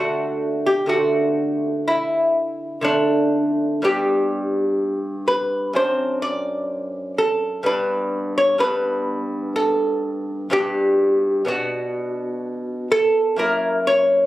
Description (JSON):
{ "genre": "classical, baroque-style dance for lute", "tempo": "63 BPM", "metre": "4/4", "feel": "rubato", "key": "unclear", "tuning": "A4 = 440 Hz", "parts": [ { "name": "lute", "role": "solo", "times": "0.0-14.3 s", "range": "F#2 to D5", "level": "-18 LUFS", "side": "equal", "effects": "none" } ], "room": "light reverb", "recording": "recorded on a phone in the room, club reverb, compression", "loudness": "-18 LUFS", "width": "side -15 dB against mid", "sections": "0.0-14.3 A section", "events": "none", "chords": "0.0 D; 3.8 G; 5.8 D7/F#; 7.7 G; 11.5 Bm; 13.4 F#7", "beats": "0.91 1.89 2.85 | 3.84 4.81 5.76 6.71 | 7.66 8.61 9.56 10.52 | 11.48 12.43 13.39" }